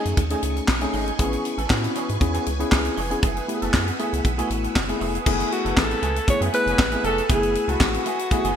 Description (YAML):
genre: early-eighties boogie funk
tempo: 118 BPM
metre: 4/4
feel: straight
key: F# dorian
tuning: A4 = 441 Hz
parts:
  - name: tine electric piano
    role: accompaniment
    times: 0.0-8.5 s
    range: A3 to G#4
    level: -26 LUFS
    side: left 2 dB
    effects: wide subtle chorus
  - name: phased string machine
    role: sustained chords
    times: 0.0-8.6 s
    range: A3 to E6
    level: -32 LUFS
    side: equal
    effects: ensemble chorus, phaser
  - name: clean electric guitar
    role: riff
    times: 0.0-8.6 s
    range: E3 to A4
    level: -32 LUFS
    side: right 4 dB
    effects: ensemble chorus
  - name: rubbery square bass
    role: bass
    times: 0.1-8.5 s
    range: E#1 to A2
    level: -27 LUFS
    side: equal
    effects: none
  - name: tight funk drum kit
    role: drums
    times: 0.1-8.6 s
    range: crash cymbal, handclaps, hi-hat, kick drum, snare drum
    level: -23 LUFS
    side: equal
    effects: gated reverb
  - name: clear alto saxophone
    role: melody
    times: 5.5-8.6 s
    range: F#4 to C#5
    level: -24 LUFS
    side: equal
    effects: none
  - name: warm horn section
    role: second line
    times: 6.7-7.2 s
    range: E3 to A4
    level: -30 LUFS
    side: left 1 dB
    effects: none
room: light reverb, small room ambience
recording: bright 1980s-style digital production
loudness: -20 LUFS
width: side -8 dB against mid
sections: 0.0-5.3 A section; 5.3-8.6 B section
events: none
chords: 0.0 B13; 1.2 Amaj9; 3.2 F#m11